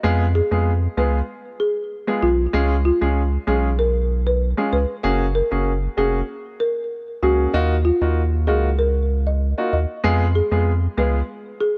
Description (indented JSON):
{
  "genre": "dancehall",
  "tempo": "96 BPM",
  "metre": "4/4",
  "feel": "straight",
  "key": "unclear",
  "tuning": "A4 = 440 Hz",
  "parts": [
    { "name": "warm grand piano", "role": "accompaniment", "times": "0.0-11.2 s", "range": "Ab3 to Ab4", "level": "-25 LUFS", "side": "equal", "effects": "none" },
    { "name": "saturated sub bass", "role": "bass", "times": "0.0-11.2 s", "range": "F1 to F2", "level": "-22 LUFS", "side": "equal", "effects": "none" },
    { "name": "folk marimba with medium mallets", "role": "melody", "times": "0.4-11.7 s", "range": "F4 to Eb5", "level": "-25 LUFS", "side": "equal", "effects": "delay" }
  ],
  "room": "small room ambience",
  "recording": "worn, warbling old tape, cassette tape, warbly pitch drift",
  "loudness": "-20 LUFS",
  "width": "mono",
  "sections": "0.0-11.8 A section",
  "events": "none",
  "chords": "0.0 Fdim; 5.0 Gbadd9; 7.5 Ebmadd9; 10.0 Fdim"
}